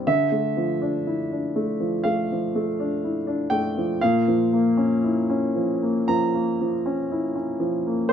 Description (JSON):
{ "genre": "neoclassical minimalist piano", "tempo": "60 BPM", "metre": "4/4", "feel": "rubato", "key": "unclear", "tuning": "A4 = 436 Hz", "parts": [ { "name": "clear baby grand piano", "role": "solo", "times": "0.0-8.1 s", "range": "Bb2 to Bb5", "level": "-21 LUFS", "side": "equal", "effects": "none" } ], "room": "light reverb", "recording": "minimal, uncompressed stereo recording", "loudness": "-21 LUFS", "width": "side -8 dB against mid", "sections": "0.0-8.1 A section", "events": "none", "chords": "0.1 Dmadd9; 4.0 Bbm" }